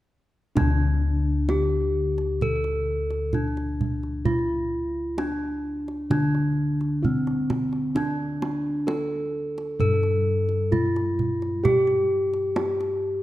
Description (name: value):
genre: Javanese gamelan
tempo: 65 BPM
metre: 4/4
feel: straight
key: D slendro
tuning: A4 = 440 Hz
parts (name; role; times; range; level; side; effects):
- gamelan-type bronze metallophone; melody; 0.6-13.2 s; C4-25c to A4; -25 LUFS; equal; slapback echo
- gamelan-type bossed gongs; bass; 0.6-13.2 s; D2 to G4; -26 LUFS; left 1 dB; none
- kendang; percussion; 0.6-12.9 s; none; -29 LUFS; right 2 dB; none
room: moderate concert hall reverb, RT60 2.0 s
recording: dark, warm production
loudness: -22 LUFS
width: side -15 dB against mid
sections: 0.6-13.2 A section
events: none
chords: none